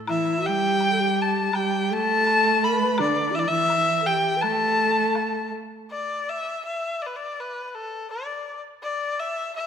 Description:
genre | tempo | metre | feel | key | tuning
chinese traditional, Chinese chamber ensemble | 82 BPM | 2/4 | rubato | A shang mode | A4 = 440 Hz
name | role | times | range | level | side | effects
rich erhu | melody | 0.1-9.7 s | A4 to B5 | -23 LUFS | left 2 dB | none
mellow hollow xiao | second line | 0.1-5.5 s | D4 to B4 | -27 LUFS | left 2 dB | none
rich cello | second line | 0.1-5.5 s | D3 to A3 | -28 LUFS | right 7 dB | none
woodblock | percussion | 0.1-5.3 s | none | -35 LUFS | left 2 dB | none
room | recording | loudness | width
wet scoring stage reverb, RT60 1.7 s | none | -21 LUFS | side -8 dB against mid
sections
0.0-5.9 A section; 5.9-9.7 B section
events
none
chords
none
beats
| 0.08 0.81 | 1.54 2.27 | 2.99 3.70 | 4.42 5.15 | 5.89 6.64 | 7.38 8.10 | 8.81 9.53

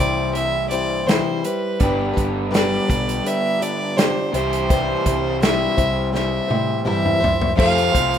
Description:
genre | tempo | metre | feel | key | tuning
folk rock and heartland rock | 83 BPM | 4/4 | straight | unclear | A4 = 440 Hz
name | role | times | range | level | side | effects
clear fiddle | melody | 0.0-8.2 s | B4 to F5 | -23 LUFS | right 1 dB | none
picked plugged-in swing-style acoustic guitar | accompaniment | 0.0-8.2 s | C3 to C5 | -24 LUFS | left 5 dB | none
raw garage guitar | riff | 0.0-8.2 s | F2 to G4 | -24 LUFS | right 1 dB | overdrive
hollow-body short-scale picked electric bass | bass | 0.0-8.2 s | G1 to A2 | -27 LUFS | equal | none
natural country drum kit | drums | 0.0-8.2 s | crash cymbal, hi-hat, kick drum, snare drum, toms | -22 LUFS | equal | none
warm grand piano | accompaniment | 7.6-8.1 s | F4 to C5 | -26 LUFS | right 1 dB | none
room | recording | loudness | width
small room ambience | rough home demo mix | -17 LUFS | side -9 dB against mid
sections
0.0-7.6 A section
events
drum fill 6.1-7.6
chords
0.0 C; 1.8 G; 4.3 C; 7.6 F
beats
0.36 1.08 | 1.81 2.53 3.25 3.98 | 4.70 5.42 6.14 6.86 | 7.58

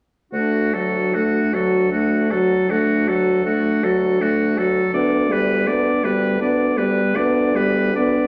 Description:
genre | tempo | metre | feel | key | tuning
classical, slow romantic movement for wind quintet | 49-55 BPM (dotted quarters) | 12/8 | rubato | D major | A4 = 440 Hz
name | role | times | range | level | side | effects
bright oboe | second line | 0.3-8.3 s | F#4 to D5 | -25 LUFS | equal | none
mellow French horn | accompaniment | 0.3-8.3 s | F#3 to B3 | -22 LUFS | equal | none
warm clarinet | accompaniment | 0.3-8.3 s | B3 to F#4 | -27 LUFS | equal | none
warm bassoon | bass | 0.3-8.2 s | D2 | -27 LUFS | equal | none
room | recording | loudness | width
wet recital hall reverb, RT60 1.5 s | none | -19 LUFS | mono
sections
0.3-8.3 A section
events
none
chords
0.3 D; 4.9 G/D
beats
| 0.33 1.54 2.70 3.84 | 4.94 6.03 7.15

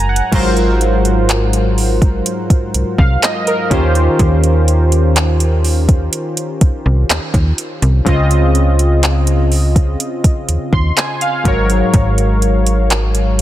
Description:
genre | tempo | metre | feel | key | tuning
contemporary R&B | 62 BPM | 4/4 | straight | unclear | A4 = 441 Hz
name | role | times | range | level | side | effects
warm analog keys | accompaniment | 0.0-13.4 s | Ab2 to C6 | -16 LUFS | equal | chorus
slap-like FM bass | bass | 0.0-13.4 s | Gb1 to Eb2 | -14 LUFS | equal | none
smooth R&B drum kit | drums | 0.0-13.4 s | crash cymbal, handclaps, hi-hat, kick drum | -16 LUFS | equal | overdrive
room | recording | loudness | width
digital ambience | dense, heavily limited modern master | -11 LUFS | side -13 dB against mid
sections
0.3-13.4 A section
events
none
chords
0.3 Ab13; 3.7 Eb13; 8.1 Dbmaj9; 11.5 Ab9sus4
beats
| 0.32 1.29 2.26 3.23 | 4.19 5.16 6.13 7.10 | 8.06 9.03 10.00 10.97 | 11.94 12.90

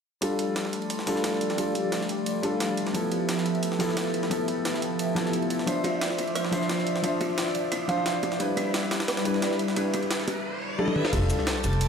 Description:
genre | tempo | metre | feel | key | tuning
liquid drum and bass | 176 BPM | 4/4 | straight | F lydian | A4 = 440 Hz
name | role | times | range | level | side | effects
dark grand piano | accompaniment | 0.2-11.9 s | F3 to E5 | -28 LUFS | left 1 dB | ping-pong delay
airy breathy pad | sustained chords | 0.2-11.9 s | F3 to A5 | -31 LUFS | right 1 dB | chorus, phaser
breakbeat sampler-style drum kit | drums | 0.2-11.9 s | hi-hat, ride cymbal, snare drum | -34 LUFS | equal | high-pass filter on cymbals, high-pass filter on snare, high-pass filter on hats
electronic kick drum | drums | 0.2-11.2 s | none | -36 LUFS | equal | high-pass filter on kick
jungle sampler-style drum kit | drums | 0.2-11.9 s | crash cymbal, hi-hat, shaker, snare drum, toms | -35 LUFS | right 1 dB | none
buzzing kalimba | arpeggios | 5.8-10.0 s | E4 to F5 | -32 LUFS | right 2 dB | analog delay
bongos | percussion | 5.8-10.3 s | none | -37 LUFS | equal | none
riser and sub drop | sound effects | 9.5-11.9 s | none | -34 LUFS | equal | none
upright bass | bass | 11.1-11.9 s | F1 | -26 LUFS | equal | none
room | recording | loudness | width
wet lush hall reverb, RT60 1.5 s, digital ambience | dreamy mix soaked in reverb | -24 LUFS | side -6 dB against mid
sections
0.2-11.1 A section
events
filter sweep on analog synth pad 0.2-11.1; riser 9.5-11.1; drum fill 10.8-11.1; impact 11.1-11.9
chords
0.2 F69; 2.9 G13; 5.7 Dm9; 8.4 Em7; 11.1 F69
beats
| 0.22 0.56 0.90 1.24 | 1.58 1.92 2.27 2.60 | 2.95 3.29 3.63 3.97 | 4.31 4.65 4.99 5.33 | 5.67 6.01 6.36 6.70 | 7.04 7.38 7.72 8.06 | 8.40 8.74 9.08 9.42 | 9.77 10.11 10.45 10.79 | 11.13 11.47 11.81

